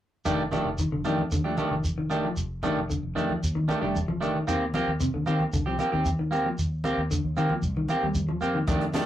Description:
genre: afrobeat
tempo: 114 BPM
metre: 4/4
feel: straight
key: F mixolydian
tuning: A4 = 441 Hz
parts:
  - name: electric guitar at the edge of break-up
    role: arpeggios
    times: 0.3-9.1 s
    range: C3 to G3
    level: -30 LUFS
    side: left 2 dB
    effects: spring reverb
  - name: electric guitar at the edge of break-up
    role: stabs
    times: 0.3-9.1 s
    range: Eb3 to G4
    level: -27 LUFS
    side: right 1 dB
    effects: none
  - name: fingered electric bass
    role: bass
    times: 0.3-9.0 s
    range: F1 to Eb3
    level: -32 LUFS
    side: equal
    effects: none
  - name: shekere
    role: percussion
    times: 0.3-9.1 s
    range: none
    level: -30 LUFS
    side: equal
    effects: none
  - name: congas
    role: percussion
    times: 0.5-9.1 s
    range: none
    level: -34 LUFS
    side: equal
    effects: none
  - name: compact cocktail drum kit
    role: drums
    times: 8.7-9.1 s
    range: hi-hat, kick drum, snare drum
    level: -29 LUFS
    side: left 1 dB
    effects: none
room: wet booth ambience, RT60 0.2 s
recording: rough rehearsal-room recording, warm saturation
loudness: -24 LUFS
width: side -12 dB against mid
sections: 0.3-9.1 A section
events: none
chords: 0.3 F13; 4.5 Eb6

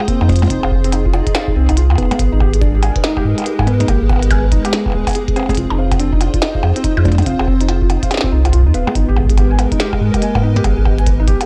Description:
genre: IDM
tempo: 142 BPM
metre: 4/4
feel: swing 62% on 16ths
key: F dorian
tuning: A4 = 442 Hz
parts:
  - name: soft struck synth lead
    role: melody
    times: 0.0-11.5 s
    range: Ab3 to Eb4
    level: -25 LUFS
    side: equal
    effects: chorus, tape echo
  - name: hollow soft pad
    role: sustained chords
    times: 0.0-11.5 s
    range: Ab3 to Eb5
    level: -28 LUFS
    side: equal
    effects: ensemble chorus
  - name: felt-muted upright piano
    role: arpeggios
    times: 0.0-11.5 s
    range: Ab3 to Ab5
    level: -25 LUFS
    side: equal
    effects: vintage 12-bit sampler grit, tape echo
  - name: glitchy drum kit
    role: drums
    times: 0.0-11.5 s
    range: hi-hat, percussion blips, snare drum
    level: -24 LUFS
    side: equal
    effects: small room reverb
  - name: electronic kick drum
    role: drums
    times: 0.1-11.4 s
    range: none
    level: -21 LUFS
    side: equal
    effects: small room reverb
  - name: warm sub bass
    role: bass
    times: 0.2-11.4 s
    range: Eb1 to Ab2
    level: -16 LUFS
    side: equal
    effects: none
room: digital ambience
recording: dry, gritty hardware recording, transformer saturation, cassette tape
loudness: -15 LUFS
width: mono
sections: 0.0-11.5 A section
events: none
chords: 0.0 Fm; 2.2 Abmadd9; 5.6 Fm; 9.0 Abmadd9

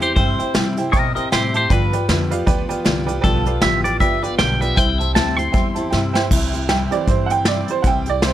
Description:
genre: rockabilly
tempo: 156 BPM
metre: 4/4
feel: swing 59% on 8ths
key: C major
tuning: A4 = 440 Hz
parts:
  - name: twangy electric guitar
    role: melody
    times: 0.0-6.3 s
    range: G4 to C6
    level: -20 LUFS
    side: equal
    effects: phaser, analog delay
  - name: clear upright piano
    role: accompaniment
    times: 0.0-8.3 s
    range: E3 to A5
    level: -24 LUFS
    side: right 7 dB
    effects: none
  - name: picked steel-string acoustic guitar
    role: accompaniment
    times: 0.0-8.3 s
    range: G2 to G4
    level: -24 LUFS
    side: left 2 dB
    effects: none
  - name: upright bass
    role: bass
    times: 0.0-8.3 s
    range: G1 to C3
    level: -23 LUFS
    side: equal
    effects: none
  - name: vintage brush drum kit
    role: drums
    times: 0.0-8.3 s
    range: crash cymbal, hi-hat, kick drum, snare drum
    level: -20 LUFS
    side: equal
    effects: none
room: light reverb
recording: none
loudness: -16 LUFS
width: side -12 dB against mid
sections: 0.0-6.3 A section; 6.3-8.3 B section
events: drum fill 5.9-6.3; upright piano solo 6.3-8.3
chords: 0.0 C; 1.7 G7; 4.8 C

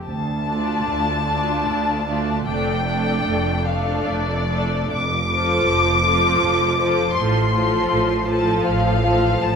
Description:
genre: classical, slow romantic movement for string orchestra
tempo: 68-83 BPM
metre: 3/4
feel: rubato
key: D minor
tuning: A4 = 439 Hz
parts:
  - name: muted symphonic violin section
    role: second line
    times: 0.0-9.6 s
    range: F4 to D5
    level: -25 LUFS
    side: left 2 dB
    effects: none
  - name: muted chamber violin section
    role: melody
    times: 0.1-9.6 s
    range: D5 to D6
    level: -22 LUFS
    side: left 4 dB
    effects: none
  - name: muted symphonic cello section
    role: bass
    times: 0.1-9.6 s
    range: D2 to A2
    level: -26 LUFS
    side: right 2 dB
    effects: none
  - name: muted symphonic double bass section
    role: bass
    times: 0.1-9.6 s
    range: F1 to D2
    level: -26 LUFS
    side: right 3 dB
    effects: none
  - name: muted symphonic viola section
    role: accompaniment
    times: 0.5-9.6 s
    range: F3 to F4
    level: -24 LUFS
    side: right 3 dB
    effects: none
room: moderate scoring stage reverb, RT60 1.6 s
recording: none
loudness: -17 LUFS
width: side -6 dB against mid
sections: 0.1-9.6 A section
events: none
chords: 0.1 Dm; 2.5 Dm/F; 4.9 F; 7.2 F/A

